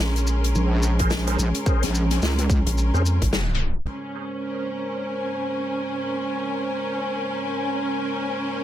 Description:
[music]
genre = glitch hop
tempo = 108 BPM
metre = 4/4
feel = swing 61% on 16ths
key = Bb minor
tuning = A4 = 440 Hz
[part]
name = dark analog pad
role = sustained chords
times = 0.0-8.6 s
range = Ab3 to F5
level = -31 LUFS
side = right 2 dB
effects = chorus, vintage 12-bit sampler grit, sidechain pumping
[part]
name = rubbery square bass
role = bass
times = 0.0-3.9 s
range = Ab1 to F2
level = -22 LUFS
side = equal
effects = none
[part]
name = maracas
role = percussion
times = 0.0-3.9 s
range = none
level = -34 LUFS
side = left 4 dB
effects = none
[part]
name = rich studio string section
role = texture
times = 0.0-8.6 s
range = Db4 to C6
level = -28 LUFS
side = equal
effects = sidechain pumping
[part]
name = swinging big-band drum kit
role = drums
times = 0.2-3.9 s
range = hi-hat, snare drum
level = -29 LUFS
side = left 3 dB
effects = low-pass filter on hats, small room ambience, low-pass filter on snare, low-pass filter on room
[part]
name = wobble bass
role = bass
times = 0.6-2.6 s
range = Bb1 to Db2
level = -21 LUFS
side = equal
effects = chorus, tube saturation
[part]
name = bright tonewheel organ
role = stabs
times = 1.0-3.9 s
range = Db4 to C5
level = -33 LUFS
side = right 1 dB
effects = chorus vibrato, slow rotary speaker, sidechain pumping, digital delay
[part]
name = electronic kick drum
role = drums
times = 1.0-3.7 s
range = none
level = -23 LUFS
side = equal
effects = overdrive, small room ambience
[sound]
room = light reverb, studio reverb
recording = tape stop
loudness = -22 LUFS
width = side -12 dB against mid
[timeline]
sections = 0.0-3.9 A section; 3.9-8.6 B section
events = band accent 3.3; tape stop 3.3-3.9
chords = 0.0 Bbm9

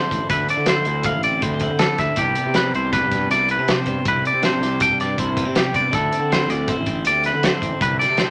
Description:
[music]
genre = math rock and midwest emo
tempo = 160 BPM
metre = 5/4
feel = straight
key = C major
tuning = A4 = 439 Hz
[part]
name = twelve-string electric guitar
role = accompaniment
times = 0.0-8.3 s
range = C3 to G4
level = -29 LUFS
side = equal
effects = none
[part]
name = twangy electric guitar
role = arpeggios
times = 0.0-8.3 s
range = G4 to G5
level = -23 LUFS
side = equal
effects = none
[part]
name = fuzz fingered electric bass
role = bass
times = 0.1-8.3 s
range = A1 to D3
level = -28 LUFS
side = equal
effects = overdrive
[part]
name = loose indie drum kit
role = drums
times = 0.1-8.3 s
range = hi-hat, kick drum, snare drum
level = -26 LUFS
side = equal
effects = none
[sound]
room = moderate studio reverb, RT60 0.8 s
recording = none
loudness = -20 LUFS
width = mono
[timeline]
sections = 0.0-8.3 A section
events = none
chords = 0.0 D7sus2; 2.2 Cmaj9; 5.9 Dsus2; 7.8 C69

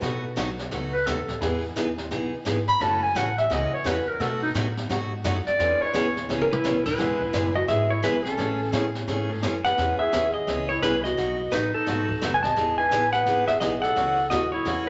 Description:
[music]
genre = country, western swing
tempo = 172 BPM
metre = 4/4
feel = swing 62% on 8ths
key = E major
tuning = A4 = 439 Hz
[part]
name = bright upright piano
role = accompaniment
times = 0.0-12.9 s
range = G#3 to C5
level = -40 LUFS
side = equal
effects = none
[part]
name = picked steel-string acoustic guitar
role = accompaniment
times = 0.0-14.9 s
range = B2 to G#4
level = -32 LUFS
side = equal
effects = none
[part]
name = upright bass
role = bass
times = 0.0-14.9 s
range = E1 to B2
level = -34 LUFS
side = equal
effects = none
[part]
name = jazz brush drum kit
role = drums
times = 0.0-14.9 s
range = brushed snare drum, crash cymbal, hi-hat, kick drum, snare drum, toms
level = -35 LUFS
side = equal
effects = none
[part]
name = growling clarinet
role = second line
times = 0.9-14.9 s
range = C#4 to B5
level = -29 LUFS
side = equal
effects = none
[part]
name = clean lap steel guitar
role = melody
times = 6.4-14.9 s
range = A4 to A5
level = -27 LUFS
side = equal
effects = none
[sound]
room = wet large studio reverb, RT60 1.4 s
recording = nothing above 7.8 kHz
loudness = -25 LUFS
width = mono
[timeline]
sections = 0.0-7.0 A section; 7.0-14.9 B section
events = clarinet solo 0.0-7.0; drum fill 6.3-6.6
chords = 0.0 B7; 1.4 Emaj7; 2.8 F#m7; 4.2 B7; 5.6 E6; 7.0 E; 8.4 Amaj7; 9.8 E6; 11.2 B7; 12.6 Emaj7; 14.0 F#m7

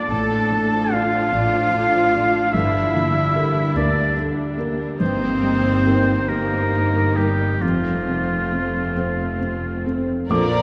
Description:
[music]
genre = cinematic, emotional film score for orchestra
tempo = 44-50 BPM (dotted quarters)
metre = 6/8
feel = rubato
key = F major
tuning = A4 = 440 Hz
[part]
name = clear oboe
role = second line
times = 0.0-9.9 s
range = F4 to A5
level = -25 LUFS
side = equal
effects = none
[part]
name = felt-muted upright piano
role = accompaniment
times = 0.0-10.6 s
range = Bb1 to D6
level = -26 LUFS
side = equal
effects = none
[part]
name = rich studio viola section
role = accompaniment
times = 0.0-10.6 s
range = D3 to Eb4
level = -30 LUFS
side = equal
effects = none
[part]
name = rich studio cello section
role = bass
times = 0.0-10.6 s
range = Bb2 to A4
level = -28 LUFS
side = equal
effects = none
[part]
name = rich studio double bass section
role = bass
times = 0.1-10.6 s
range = F1 to D2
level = -28 LUFS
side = equal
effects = none
[part]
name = rich studio violin section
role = melody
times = 10.3-10.6 s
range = Bb4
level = -28 LUFS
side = equal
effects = none
[part]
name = rich studio violin section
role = second line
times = 10.3-10.6 s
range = D5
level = -28 LUFS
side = equal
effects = none
[sound]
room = wet cathedral reverb, RT60 4.3 s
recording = recorded in a church or concert hall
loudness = -20 LUFS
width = mono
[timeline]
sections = 0.0-10.3 A section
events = none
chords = 0.1 Dm/A; 2.5 Gm; 5.0 Eb/G; 7.6 F

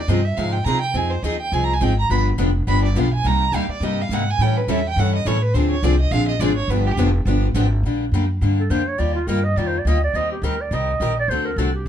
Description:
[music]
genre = acoustic string swing (jazz manouche)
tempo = 209 BPM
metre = 4/4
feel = swing 58% on 8ths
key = G minor from 7.8 s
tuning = A4 = 440 Hz
[part]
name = warm violin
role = second line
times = 0.0-6.9 s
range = G4 to B5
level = -24 LUFS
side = right 4 dB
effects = none
[part]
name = upright bass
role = bass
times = 0.0-11.9 s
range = F1 to C3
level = -20 LUFS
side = equal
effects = none
[part]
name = picked steel-string acoustic guitar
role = accompaniment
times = 0.1-11.7 s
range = C3 to Bb4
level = -24 LUFS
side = left 4 dB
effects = none
[part]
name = picked steel-string acoustic guitar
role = accompaniment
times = 0.1-7.7 s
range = C3 to A4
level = -28 LUFS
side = right 7 dB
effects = none
[part]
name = breathy clarinet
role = melody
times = 8.6-11.9 s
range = F4 to Eb5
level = -23 LUFS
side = right 3 dB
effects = none
[sound]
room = light reverb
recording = dark, warm production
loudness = -17 LUFS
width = side -10 dB against mid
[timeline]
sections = 0.0-7.8 A section; 7.8-11.9 A section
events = violin solo 0.0-7.8; clarinet solo 7.8-11.9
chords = 0.0 Ab6; 1.0 Fm7; 2.1 G7; 3.3 Cm7; 4.4 A7; 5.5 Dm7b5; 6.7 G7; 7.8 Gm; 9.0 Ebadd9; 10.1 Cm7; 11.3 D7

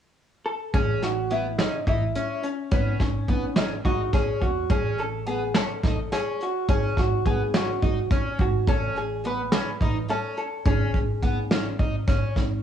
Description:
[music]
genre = progressive instrumental, band music in an uneven meter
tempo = 212 BPM (eighths)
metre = 7/8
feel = straight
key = unclear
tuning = A4 = 441 Hz
[part]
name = vintage hollow-body jazz guitar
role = melody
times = 0.5-11.5 s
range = B3 to B4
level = -28 LUFS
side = equal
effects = cassette tape
[part]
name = picked twelve-string acoustic guitar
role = arpeggios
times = 0.7-12.4 s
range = B3 to D#4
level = -31 LUFS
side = left 2 dB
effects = cassette tape
[part]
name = upright bass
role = bass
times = 0.7-12.6 s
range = G#1 to E2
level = -28 LUFS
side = right 1 dB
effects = none
[part]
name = vintage brush drum kit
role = drums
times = 0.7-12.5 s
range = hi-hat, kick drum, snare drum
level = -25 LUFS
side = equal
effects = cassette tape
[sound]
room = light reverb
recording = home recording on cassette, small room ambience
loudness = -22 LUFS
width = side -9 dB against mid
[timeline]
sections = 0.7-12.6 A section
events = none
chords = 0.0 N.C.; 0.7 A; 2.7 N.C.; 4.7 A; 6.7 G#7(no3); 8.7 A; 10.7 N.C.

